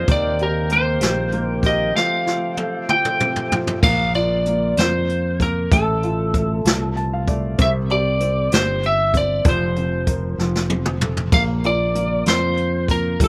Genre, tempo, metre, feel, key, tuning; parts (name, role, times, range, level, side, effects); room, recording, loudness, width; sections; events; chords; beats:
six-eight pop ballad; 64 BPM (dotted quarters); 6/8; straight; Bb major; A4 = 439 Hz
lightly driven lead guitar; melody; 0.0-13.3 s; A4 to G5; -23 LUFS; equal
warm upright piano; accompaniment; 0.0-13.3 s; Eb3 to A5; -29 LUFS; equal
tonewheel organ; sustained chords; 0.0-3.8 s; Eb3 to G4; -30 LUFS; equal; overdrive, slow rotary speaker
fingered electric bass; bass; 0.0-13.3 s; F1 to F2; -25 LUFS; equal
jazz brush drum kit; drums; 0.1-13.3 s; crash cymbal, hi-hat, kick drum, snare drum, splash cymbal, toms; -23 LUFS; equal
little or no reverb; -19 LUFS; mono
0.0-3.8 A section; 3.8-13.3 B section
drum fill 1.9-3.8, 10.4-11.3; upright piano fill 6.7-7.6
0.1 Eb6; 1.9 Fadd9; 3.8 Bb; 5.7 F/A; 7.6 C5; 9.5 Fsus4; 10.4 F; 11.3 Bbadd9
| 0.08 1.02 | 1.95 2.89 | 3.83 4.78 | 5.72 6.65 | 7.59 8.52 | 9.45 10.39 | 11.33 12.27 | 13.20